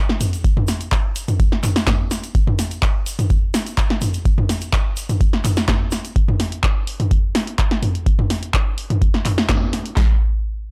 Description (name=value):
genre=house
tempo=126 BPM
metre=4/4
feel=straight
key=none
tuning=none
part: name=punchy analog drum machine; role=drums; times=0.1-9.9 s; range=handclaps, hi-hat, snare drum, toms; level=-23 LUFS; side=equal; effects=none
part: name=tube shaker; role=percussion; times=0.2-6.1 s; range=none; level=-37 LUFS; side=equal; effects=none
part: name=booming analog drum machine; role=drums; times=0.4-10.1 s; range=handclaps, kick drum, snare drum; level=-21 LUFS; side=equal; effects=overdrive
room=little or no reverb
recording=dark, warm production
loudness=-19 LUFS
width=mono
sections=0.0-10.0 A section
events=drop 0.0-10.0; band accent 9.5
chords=none